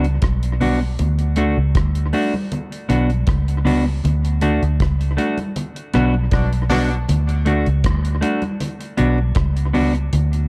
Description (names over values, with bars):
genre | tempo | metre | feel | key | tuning
roots reggae | 79 BPM | 4/4 | straight | unclear | A4 = 440 Hz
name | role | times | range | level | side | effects
semi-hollow electric guitar | accompaniment | 0.0-10.0 s | A3 to F#4 | -24 LUFS | equal | dub echo
vintage muted fingered electric bass | bass | 0.0-10.5 s | B1 to D2 | -20 LUFS | equal | none
deep reggae drum kit | drums | 0.0-10.5 s | hi-hat, kick drum, rim click | -25 LUFS | equal | analog delay
congas | percussion | 0.1-10.3 s | none | -31 LUFS | equal | none
clear horn section | second line | 6.3-6.9 s | B2 to D4 | -30 LUFS | equal | dub echo
room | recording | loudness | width
light reverb, studio reverb | dark, warm production | -19 LUFS | mono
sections
0.0-10.5 A section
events
band accent 4.0-7.1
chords
0.0 Bm; 1.0 D; 2.5 Bm; 4.0 D; 5.6 Bm; 7.1 D; 8.6 Bm